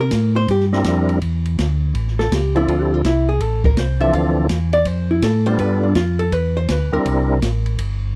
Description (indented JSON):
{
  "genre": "soul jazz organ trio",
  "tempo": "164 BPM",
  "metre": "4/4",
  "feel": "swing 65% on 8ths",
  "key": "C mixolydian",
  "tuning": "A4 = 440 Hz",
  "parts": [
    { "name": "hollow-body jazz guitar", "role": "accompaniment", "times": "0.0-7.8 s", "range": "D4 to F5", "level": "-23 LUFS", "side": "equal", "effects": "none" },
    { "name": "mellow tonewheel organ", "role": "bass", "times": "0.0-8.1 s", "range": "G1 to C3", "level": "-21 LUFS", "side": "equal", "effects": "chorus vibrato, slow rotary speaker" },
    { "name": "open jazz drum kit", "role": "drums", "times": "0.1-7.9 s", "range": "hi-hat, kick drum, ride cymbal, snare drum", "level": "-26 LUFS", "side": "equal", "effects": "none" },
    { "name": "percussive tonewheel organ", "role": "melody", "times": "0.7-7.4 s", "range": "E3 to Bb4", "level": "-21 LUFS", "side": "equal", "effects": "slow rotary speaker, overdrive, chorus vibrato" }
  ],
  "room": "little or no reverb",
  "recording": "dry, close 1970s-style studio recording",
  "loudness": "-18 LUFS",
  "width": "mono",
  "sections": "0.0-8.2 A section",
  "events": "hollow-body jazz guitar solo 0.0-8.2",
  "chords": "0.0 C7; 1.2 Dsus2; 1.9 A; 2.7 Dm7; 5.6 G7; 7.1 C7",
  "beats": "0.12 0.48 0.85 | 1.21 1.58 1.94 2.31 | 2.67 3.04 3.40 3.77 | 4.13 4.50 4.87 5.23 | 5.60 5.96 6.33 6.69 | 7.06 7.42 7.79"
}